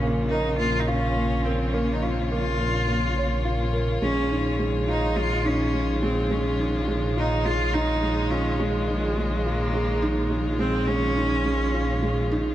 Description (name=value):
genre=piano and strings electronica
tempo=105 BPM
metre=4/4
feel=straight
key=unclear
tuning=A4 = 440 Hz
part: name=warm string quartet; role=sustained chords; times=0.0-12.5 s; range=Db3 to Db5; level=-31 LUFS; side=left 2 dB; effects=none
part: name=felt-muted upright piano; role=riff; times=0.0-12.5 s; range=Ab3 to Db5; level=-27 LUFS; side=right 1 dB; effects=none
part: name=dark detuned saw bass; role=bass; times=0.0-12.5 s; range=Bb1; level=-26 LUFS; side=equal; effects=none
part: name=clear cello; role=melody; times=0.3-12.5 s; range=Ab3 to F4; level=-28 LUFS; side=right 1 dB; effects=none
room=light reverb, small room ambience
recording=dark, warm production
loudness=-22 LUFS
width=side -13 dB against mid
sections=0.0-12.5 A section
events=none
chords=0.0 Bbm; 4.0 Dbadd9/Bb